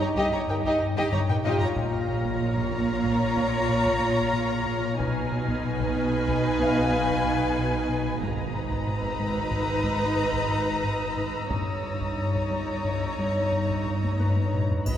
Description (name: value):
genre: cinematic, suspense film score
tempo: 93 BPM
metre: 5/4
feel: straight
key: unclear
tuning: A4 = 443 Hz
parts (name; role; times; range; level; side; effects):
- warm studio violin section; melody; 0.0-15.0 s; Eb5 to B5; -31 LUFS; left 2 dB; none
- warm studio violin section; second line; 0.0-15.0 s; G4 to D#5; -30 LUFS; equal; none
- rich studio viola section; accompaniment; 0.0-15.0 s; Eb4 to F#4; -32 LUFS; right 2 dB; none
- rubbery square bass; riff; 0.0-15.0 s; G2 to B3; -30 LUFS; left 2 dB; none
- rich studio cello section; bass; 0.0-15.0 s; G2 to B2; -32 LUFS; right 2 dB; none
- rich studio violin section; texture; 0.0-14.5 s; Ab5 to Bb6; -40 LUFS; left 2 dB; none
- rich studio double bass section; bass; 0.2-15.0 s; G1 to B1; -34 LUFS; right 2 dB; none
- taiko ensemble; drums; 0.2-15.0 s; none; -36 LUFS; equal; none
- Celtic harp; texture; 0.2-15.0 s; Eb4 to Eb6; -36 LUFS; left 3 dB; none
- warm French horn section; sustained chords; 14.9-15.0 s; F#3 to B4; -41 LUFS; left 1 dB; none
- triangle; percussion; 14.9-15.0 s; none; -38 LUFS; left 2 dB; none
room: wet cathedral reverb, RT60 4.1 s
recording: recorded in a church or concert hall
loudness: -23 LUFS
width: side -10 dB against mid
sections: 0.0-14.9 A section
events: drum fill 1.0-1.8, 14.0-14.9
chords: 0.0 Eb/G; 1.8 Bbm; 5.0 B6; 8.2 Abmadd9; 11.5 Eb7/G